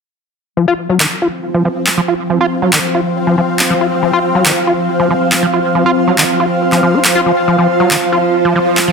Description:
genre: psychedelic trance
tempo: 139 BPM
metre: 4/4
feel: straight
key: unclear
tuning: A4 = 440 Hz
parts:
  - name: bubbling stepped-filter texture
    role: sustained chords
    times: 1.1-8.9 s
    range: F3 to F4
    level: -17 LUFS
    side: equal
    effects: chorus, built-in reverb
  - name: overdriven acid bass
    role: riff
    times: 0.6-8.9 s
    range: Eb3 to F4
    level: -15 LUFS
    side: moving between left 5 dB and right 4 dB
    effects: auto-pan, cassette tape, digital delay
  - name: granular cloud pad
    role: texture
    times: 1.4-8.9 s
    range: F4 to F5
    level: -17 LUFS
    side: right 1 dB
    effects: built-in reverb
  - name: electronic handclaps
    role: drums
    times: 1.0-8.9 s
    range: none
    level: -14 LUFS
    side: equal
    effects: none
room: moderate digital room reverb, RT60 1.0 s, digital ambience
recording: dense, heavily limited modern master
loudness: -11 LUFS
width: side -5 dB against mid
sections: 0.6-8.9 A section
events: filter sweep on acid bass 0.6-8.9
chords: 0.6 F5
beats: | 0.57 1.00 1.43 1.87 | 2.30 2.73 3.16 3.59 | 4.02 4.46 4.89 5.32 | 5.75 6.18 6.61 7.04 | 7.48 7.91 8.34 8.77

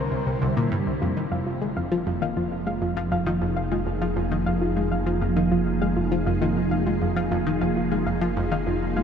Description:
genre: ambient, sequencer-driven space music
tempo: 100 BPM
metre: 4/4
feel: straight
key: F minor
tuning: A4 = 440 Hz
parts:
  - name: evolving wavetable pad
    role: sustained chords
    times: 0.0-9.0 s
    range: C3 to Ab4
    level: -26 LUFS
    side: right 1 dB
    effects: ensemble chorus, built-in reverb, phaser, shimmer reverb
  - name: analog pluck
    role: riff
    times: 0.0-9.0 s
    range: C2 to Ab3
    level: -27 LUFS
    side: left 1 dB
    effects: chorus, analog delay
  - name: soft round pluck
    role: arpeggios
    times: 1.0-9.0 s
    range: F4 to F5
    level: -30 LUFS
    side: left 1 dB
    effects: chorus, auto-pan, shimmer reverb, analog delay
  - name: fat analog bass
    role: bass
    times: 1.0-9.0 s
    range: F1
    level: -30 LUFS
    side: equal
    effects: none
  - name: wind-like tuned noise texture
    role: texture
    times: 4.7-9.0 s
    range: F4 to F5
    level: -42 LUFS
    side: left 2 dB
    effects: none
room: wet huge ambient reverb, RT60 8.2 s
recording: dark, warm production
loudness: -22 LUFS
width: side -7 dB against mid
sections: 0.0-1.0 A section; 1.0-9.0 B section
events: none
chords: 0.0 C7; 1.0 Fm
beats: 0.41 | 1.01 1.61 2.21 2.81 | 3.42 4.01 4.62 5.21 | 5.82 6.42 7.01 7.62 | 8.21 8.81

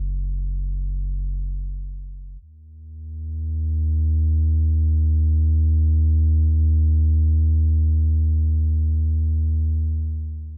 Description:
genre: ambient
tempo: free time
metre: none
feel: none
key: unclear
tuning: A4 = 441 Hz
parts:
  - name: warm sub bass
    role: bass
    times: 0.0-10.6 s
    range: Gb1 to Eb2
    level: -21 LUFS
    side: equal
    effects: none
room: little or no reverb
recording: worn, warbling old tape, cassette tape, warbly pitch drift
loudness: -21 LUFS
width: mono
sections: 0.0-10.6 A section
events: none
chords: none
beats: free time

